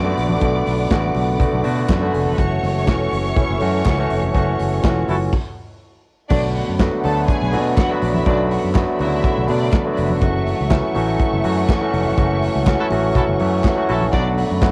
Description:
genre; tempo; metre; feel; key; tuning
disco; 123 BPM; 4/4; straight; B minor; A4 = 440 Hz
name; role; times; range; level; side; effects
bright studio string section; second line; 0.0-9.9, 14.1-14.5 s; D4 to D6; -30 LUFS; equal; none
barky tine electric piano; accompaniment; 0.0-14.7 s; C#3 to A4; -23 LUFS; equal; none
dark studio string section; sustained chords; 0.0-14.7 s; A3 to C#6; -30 LUFS; equal; none
fingered electric bass; bass; 0.0-14.7 s; E1 to B2; -24 LUFS; equal; none
modern studio drum kit; drums; 0.2-14.7 s; crash cymbal, hi-hat, kick drum, snare drum; -24 LUFS; equal; cassette tape
congas; percussion; 0.3-14.7 s; none; -32 LUFS; equal; none
group handclap; percussion; 0.9-14.7 s; none; -39 LUFS; equal; none
clear horn section; stabs; 5.1-5.2, 12.8-14.0 s; E4 to A4; -28 LUFS; equal; none
room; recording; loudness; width
light reverb, small room ambience; home recording on cassette; -18 LUFS; mono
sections
0.0-6.3 A section; 6.3-14.7 B section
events
band accent 4.3-6.3, 12.2-14.1; stop 5.3-6.3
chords
0.0 Bm7; 2.4 F#m7; 6.3 Bm7; 10.2 F#m7; 14.1 Bm7

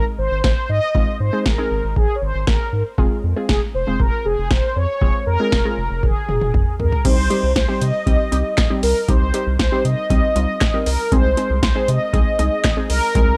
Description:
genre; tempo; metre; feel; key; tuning
synth-pop; 118 BPM; 4/4; straight; unclear; A4 = 440 Hz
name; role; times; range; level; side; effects
mellow synth brass; melody; 0.0-13.4 s; Ab4 to Eb5; -24 LUFS; equal; chorus, tape echo
warbly dusty pluck; accompaniment; 0.0-13.4 s; G3 to Bb4; -26 LUFS; equal; chorus, phaser
round analog bass; bass; 0.0-13.4 s; F1 to C3; -24 LUFS; equal; none
electro analog drum machine; drums; 0.4-13.3 s; crash cymbal, handclaps, hi-hat, kick drum, snare drum, toms; -21 LUFS; equal; none
room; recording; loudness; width
little or no reverb; dry, gritty hardware recording, cassette tape; -18 LUFS; mono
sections
0.0-7.0 A section; 7.0-13.4 B section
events
drum fill 6.0-7.0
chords
0.0 Abadd9; 3.0 Fm; 7.0 Cm; 11.1 Ab

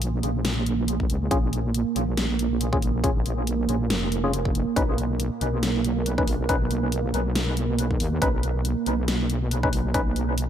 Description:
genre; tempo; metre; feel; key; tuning
deep dubstep; 139 BPM; 4/4; swing 56% on 16ths, half-time; unclear; A4 = 439 Hz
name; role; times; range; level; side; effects
dark analog pad; sustained chords; 0.0-10.5 s; Bb3; -28 LUFS; right 6 dB; chorus
wobble bass; bass; 0.0-10.5 s; F1 to D#2; -26 LUFS; left 1 dB; chorus
dubstep drum kit; drums; 0.0-10.5 s; hi-hat, snare drum; -29 LUFS; left 1 dB; none
electronic kick drum; drums; 1.0-10.0 s; none; -26 LUFS; equal; none
percussive organ stab; stabs; 1.3-10.0 s; Db4 to B4; -30 LUFS; left 2 dB; chorus, cassette tape, dub echo
room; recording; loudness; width
little or no reverb; none; -22 LUFS; side -10 dB against mid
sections
0.0-10.5 A section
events
none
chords
0.0 Bbm; 4.8 B

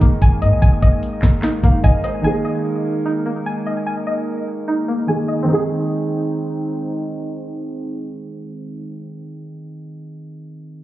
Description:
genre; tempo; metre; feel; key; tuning
hip hop, trap; 148 BPM; 4/4; half-time; Ab major; A4 = 441 Hz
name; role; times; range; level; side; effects
dark grand piano; accompaniment; 0.0-10.8 s; Eb3 to F5; -24 LUFS; right 2 dB; none
warbly tape-like pad; sustained chords; 0.0-8.9 s; Ab3 to C5; -26 LUFS; right 1 dB; chorus, built-in reverb
string-like resonator pluck; arpeggios; 0.0-8.9 s; Bb3 to Ab5; -24 LUFS; left 1 dB; chorus, tape echo
warm 808-style bass; bass; 0.0-2.2 s; Ab1 to Ab2; -18 LUFS; equal; none
trap drum kit; drums; 0.0-2.1 s; handclaps, hi-hat, kick drum, snare drum; -14 LUFS; equal; none
room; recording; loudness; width
light reverb; heard muffled through a wall, club reverb, EQ, low-pass filter; -17 LUFS; side -15 dB against mid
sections
0.0-5.5 A section; 5.5-8.7 B section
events
filter sweep 0.0-5.5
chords
0.0 Absus2; 5.5 Ab

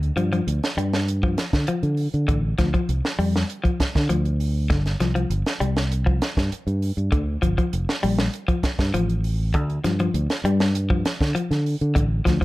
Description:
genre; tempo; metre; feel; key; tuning
afrobeat; 99 BPM; 4/4; straight; unclear; A4 = 439 Hz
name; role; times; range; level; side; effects
electric guitar at the edge of break-up; arpeggios; 0.0-12.4 s; D3 to G3; -26 LUFS; left 2 dB; plate reverb
fingered electric bass; bass; 0.0-12.4 s; F1 to D3; -22 LUFS; equal; none
tight funk drum kit; drums; 0.0-12.4 s; hi-hat, kick drum, snare drum; -24 LUFS; right 1 dB; none
room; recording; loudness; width
light reverb; none; -20 LUFS; side -18 dB against mid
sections
0.0-12.4 A section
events
none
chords
0.0 Dm; 4.7 G9sus4; 9.5 Dm

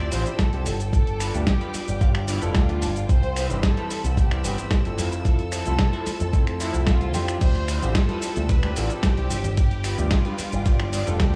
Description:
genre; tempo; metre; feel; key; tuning
nu-disco, nu disco; 111 BPM; 4/4; straight; unclear; A4 = 440 Hz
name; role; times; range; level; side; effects
warm studio violin section; melody; 0.0-11.4 s; E4 to D5; -35 LUFS; equal; vintage 12-bit sampler grit, tape echo
clear concert grand piano; accompaniment; 0.0-11.4 s; E3 to E5; -34 LUFS; equal; sidechain pumping, tape echo
rich chamber string section; sustained chords; 0.0-11.4 s; C4 to E6; -44 LUFS; equal; sidechain pumping
picked electric bass with an envelope filter; bass; 0.0-11.4 s; F1 to F2; -28 LUFS; equal; sidechain pumping
semi-hollow electric guitar; riff; 0.1-11.2 s; C4 to A5; -38 LUFS; equal; ensemble chorus, tape echo
dusty soul sampler-style drum kit; drums; 0.1-11.3 s; crash cymbal, finger snaps, hi-hat, ride cymbal, shaker, snare drum; -31 LUFS; equal; studio ambience, tape echo
electronic kick drum; drums; 0.4-11.3 s; none; -23 LUFS; equal; studio ambience
congas; percussion; 7.8-11.3 s; none; -37 LUFS; equal; none
room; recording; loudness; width
light reverb, studio reverb; echo-heavy mix, small room ambience; -23 LUFS; mono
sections
0.0-11.4 A section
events
clean electric guitar fill 1.5-3.1, 6.6-7.4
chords
0.0 Dm11; 0.9 G7; 3.1 Cmaj7; 5.0 Fmaj7; 7.4 Dm11; 9.6 G7

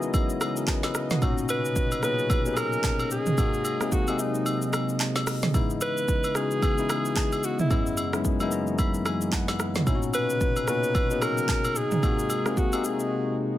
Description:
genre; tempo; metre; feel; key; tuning
amapiano; 111 BPM; 4/4; swing 58% on 16ths; unclear; A4 = 437 Hz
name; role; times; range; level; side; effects
bell-like tine electric piano; accompaniment; 0.0-13.6 s; F#2 to B5; -28 LUFS; left 4 dB; none
warm analog pad; sustained chords; 0.0-13.6 s; B#2 to D#5; -34 LUFS; right 1 dB; chorus, sidechain pumping
deep house drum kit; drums; 0.0-13.1 s; handclaps, hi-hat, kick drum, rim click, shaker, snare drum, toms; -27 LUFS; right 1 dB; none
downlifter; sound effects; 0.0-1.2 s; none; barely audible; none; none
agogo bells and woodblock; percussion; 0.1-12.8 s; none; -35 LUFS; left 1 dB; none
warm alto saxophone; melody; 1.5-13.4 s; D#4 to B4; -28 LUFS; equal; ping-pong delay
room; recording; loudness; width
little or no reverb; none; -23 LUFS; side -13 dB against mid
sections
0.0-13.6 A section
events
kick muted 4.5-5.5; tine electric piano fill 8.2-9.9; drums muted 13.1-13.6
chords
0.0 F#13sus4; 1.2 Bmaj9; 3.4 G#7/B#; 5.5 C#m9; 7.7 F#13sus4; 9.9 Bmaj9; 12.0 G#7/B#

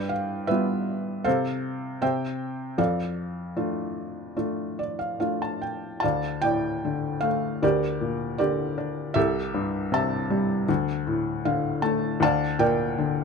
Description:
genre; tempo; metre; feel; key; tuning
classical, lyrical solo piano; 71-81 BPM; 4/4; rubato; F major, D minor from 6.0 s; A4 = 440 Hz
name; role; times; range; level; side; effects
felt-muted upright piano; solo; 0.0-13.2 s; C2 to A5; -24 LUFS; left 1 dB; none
room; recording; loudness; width
light reverb; none; -24 LUFS; side -5 dB against mid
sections
0.0-6.0 A section; 6.0-13.2 B section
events
felt piano fill 4.4-6.0, 11.1-12.2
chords
0.0 G7; 1.3 F/C; 2.0 C; 2.8 F6; 6.0 Dm; 7.6 Gm/D; 9.2 C6; 10.7 D5; 12.2 Bb/D

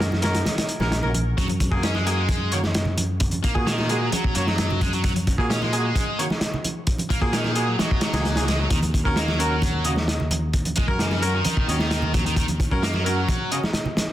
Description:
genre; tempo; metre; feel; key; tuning
breakbeat, breaks; 131 BPM; 4/4; straight; Eb minor pentatonic; A4 = 440 Hz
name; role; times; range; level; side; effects
clear horn section; stabs; 0.0-13.6 s; Bb3 to Eb5; -28 LUFS; right 1 dB; digital delay
fingered electric bass; bass; 0.0-13.2 s; Bb1 to Bb2; -25 LUFS; equal; none
crunchy breakbeat drum kit; drums; 0.0-14.1 s; hi-hat, kick drum, snare drum; -24 LUFS; equal; none
congas and bongos; percussion; 0.1-14.1 s; none; -32 LUFS; right 2 dB; none
high-gain distorted guitar; riff; 1.4-13.6 s; Db3 to Db4; -28 LUFS; equal; distortion, digital delay
room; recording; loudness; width
light reverb; dense, heavily limited modern master; -20 LUFS; side -13 dB against mid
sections
0.0-14.1 A section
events
none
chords
0.0 Ebm7 (rootless); 1.4 Gbadd9; 8.7 Ebm7

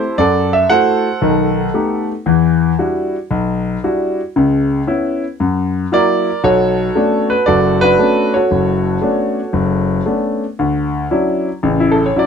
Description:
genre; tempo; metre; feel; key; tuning
solo jazz; 115 BPM; 4/4; swing 67% on 8ths; B minor; A4 = 440 Hz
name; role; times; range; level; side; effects
clear grand piano; solo; 0.0-12.3 s; F#1 to F#5; -13 LUFS; left 1 dB; none
room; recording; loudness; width
light reverb; close, detailed microphones; -13 LUFS; side -6 dB against mid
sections
0.0-10.6 A section; 10.6-12.3 B section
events
grand piano solo 10.6-12.3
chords
0.2 F#m7b5; 1.2 B7b13; 2.3 Em9; 4.3 C#m7; 5.4 F#7; 6.4 Bm9; 10.6 Dmaj9

